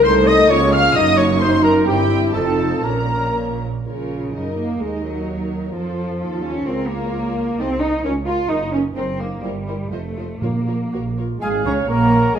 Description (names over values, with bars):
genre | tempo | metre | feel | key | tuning
quick classical-period movement for symphony orchestra | 117-134 BPM | 2/4 | rubato | Bb minor | A4 = 442 Hz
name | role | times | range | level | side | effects
muted studio violin section | melody | 0.0-12.4 s | Bb4 to F6 | -28 LUFS | left 1 dB | none
bright silver concert flute | second line | 0.0-3.6, 11.4-12.4 s | G5 to F6 | -24 LUFS | left 1 dB | none
muted studio violin section | second line | 0.0-12.4 s | G4 to F5 | -26 LUFS | left 4 dB | none
warm clarinet | second line | 0.0-3.6, 11.4-12.4 s | G4 to F5 | -24 LUFS | left 2 dB | none
muted chamber viola section | accompaniment | 0.0-12.4 s | Ab3 to Gb4 | -26 LUFS | right 4 dB | none
dark French horn section | sustained chords | 0.0-3.6, 11.4-12.4 s | Ab3 to A4 | -20 LUFS | left 4 dB | none
mellow trumpet section | stabs | 0.0-3.6, 11.4-12.4 s | G4 to F5 | -22 LUFS | right 2 dB | none
muted chamber cello section | bass | 0.0-12.4 s | C2 to F4 | -23 LUFS | right 2 dB | none
muted chamber double bass section | bass | 0.0-12.4 s | F1 to Gb2 | -25 LUFS | right 4 dB | none
timpani | percussion | 10.4-11.1 s | Bb2 | -28 LUFS | right 1 dB | none
warm oboe | second line | 11.4-12.4 s | Db5 to F5 | -27 LUFS | right 4 dB | none
room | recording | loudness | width
wet recital hall reverb, RT60 1.4 s | none | -17 LUFS | side -8 dB against mid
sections
0.0-3.9 A section; 3.9-11.4 A section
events
none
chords
0.0 Adim/C; 0.5 Bbm/Db; 1.0 Ebm/Gb; 1.9 C/G; 2.3 F7; 2.8 Bbm; 4.3 Ebm/Gb; 4.8 Ebm; 5.7 F; 6.2 F7/Eb; 6.7 Bbm/Db; 7.6 Adim/C (rootless); 8.0 Bbm/Db (rootless); 8.5 Ebm/Gb; 9.4 C7/G; 9.9 F7; 10.4 Bbm; 11.4 Db/Ab